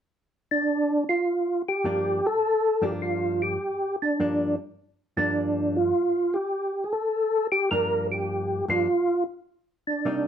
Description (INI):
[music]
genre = jazz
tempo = 102 BPM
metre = 4/4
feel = swing 67% on 8ths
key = G minor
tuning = A4 = 439 Hz
[part]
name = percussive tonewheel organ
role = melody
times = 0.5-10.3 s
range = D4 to Bb4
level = -23 LUFS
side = equal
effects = slow rotary speaker, chorus vibrato
[part]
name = hollow-body jazz guitar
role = accompaniment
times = 1.8-10.3 s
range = G2 to Eb4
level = -30 LUFS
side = left 1 dB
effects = none
[sound]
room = moderate studio reverb, RT60 0.7 s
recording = band playing live in one room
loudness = -23 LUFS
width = side -9 dB against mid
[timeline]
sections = 0.7-10.3 A section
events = none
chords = 0.0 N.C.; 0.7 Gm7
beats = 0.08 | 0.67 1.25 1.84 2.43 | 3.01 3.60 4.19 4.77 | 5.36 5.95 6.53 7.12 | 7.71 8.29 8.88 9.46 | 10.05